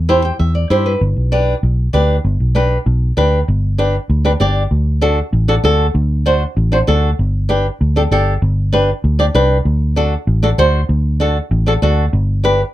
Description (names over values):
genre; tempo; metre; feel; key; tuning
latin, cumbia; 194 BPM; 4/4; straight; G major; A4 = 440 Hz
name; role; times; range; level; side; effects
fingered electric bass; bass; 0.0-12.6 s; G1 to G2; -14 LUFS; equal; none
flamenco guitar; accompaniment; 0.1-12.6 s; D4 to G5; -15 LUFS; equal; none
room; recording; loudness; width
little or no reverb; close, detailed microphones; -12 LUFS; side -14 dB against mid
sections
0.0-3.5 A section; 3.5-12.7 B section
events
nylon-string guitar fill 0.1-1.0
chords
0.0 C; 1.0 G; 4.7 D; 7.2 G; 9.7 D; 12.1 G